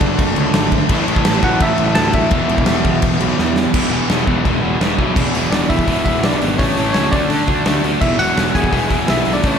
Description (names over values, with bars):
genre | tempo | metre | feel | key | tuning
punk rock | 168 BPM | 4/4 | straight | E mixolydian | A4 = 440 Hz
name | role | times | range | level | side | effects
distorted electric guitar | riff | 0.0-9.6 s | E2 to D4 | -18 LUFS | equal | distortion
fuzz picked electric bass | bass | 0.0-9.6 s | E1 to D3 | -22 LUFS | equal | overdrive
big rock drum kit | drums | 0.0-9.5 s | crash cymbal, hi-hat, kick drum, snare drum | -18 LUFS | equal | none
bell-like tine electric piano | melody | 1.4-3.4, 5.5-9.6 s | C#4 to A5 | -20 LUFS | left 1 dB | slapback echo, digital delay
room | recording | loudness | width
moderate lush hall reverb, RT60 1.9 s, studio ambience | big arena sound | -13 LUFS | side -7 dB against mid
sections
0.0-3.7 A section; 3.7-5.2 B section; 5.2-9.6 C section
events
drum fill 3.4-3.7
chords
0.0 D/F#; 0.9 A5; 2.3 E5; 5.2 E; 6.6 A; 7.1 D5; 8.0 E